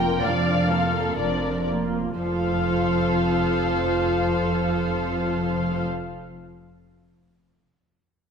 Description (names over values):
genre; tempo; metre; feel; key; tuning
classical, slow romantic movement for string orchestra; 55-67 BPM; 3/4; rubato; F major; A4 = 439 Hz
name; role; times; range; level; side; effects
muted symphonic violin section; melody; 0.0-5.8 s; D5 to G5; -28 LUFS; left 5 dB; none
muted studio violin section; second line; 0.0-5.8 s; A4 to D5; -28 LUFS; equal; none
muted symphonic viola section; accompaniment; 0.0-5.8 s; F3 to F4; -26 LUFS; equal; none
muted studio double bass section; bass; 0.0-5.8 s; F1; -29 LUFS; right 2 dB; none
muted symphonic cello section; bass; 0.0-5.9 s; F2; -28 LUFS; right 2 dB; none
room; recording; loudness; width
wet concert hall reverb, RT60 1.8 s; none; -21 LUFS; side -6 dB against mid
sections
0.0-2.2 A section; 2.2-5.1 B section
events
slowing down 0.0-2.2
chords
0.0 Bb/F; 2.2 F